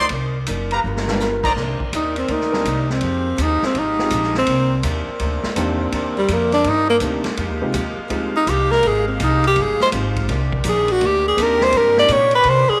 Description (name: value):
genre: jazz, big band swing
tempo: 165 BPM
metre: 4/4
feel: swing 66% on 8ths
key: C minor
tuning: A4 = 441 Hz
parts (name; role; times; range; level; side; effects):
- clear trumpet section; stabs; 0.0-1.5 s; Eb4 to A#5; -25 LUFS; equal; none
- upright bass; bass; 0.0-12.7 s; F#1 to C3; -26 LUFS; equal; none
- picked acoustic archtop guitar; accompaniment; 0.1-12.7 s; C3 to D5; -32 LUFS; equal; none
- swinging big-band drum kit; drums; 0.1-12.6 s; crash cymbal, hi-hat, kick drum, ride cymbal, snare drum; -30 LUFS; equal; none
- warm grand piano; accompaniment; 1.1-12.1 s; G3 to A#4; -29 LUFS; equal; none
- bright saxophone section; sustained chords; 1.6-12.8 s; Ab3 to F5; -31 LUFS; equal; none
- warm tenor saxophone; melody; 2.0-12.8 s; G3 to D5; -19 LUFS; equal; none
room: wet spring reverb, RT60 2.2 s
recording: none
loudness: -19 LUFS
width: mono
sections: 0.0-1.6 A section; 1.6-12.8 B section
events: drum fill 0.8-1.2; tenor saxophone solo 1.6-12.8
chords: 0.1 Cm9; 0.8 G7#9; 1.6 Cm9; 3.0 Fm9; 4.5 Cm9; 7.4 Fm9; 10.3 Cm9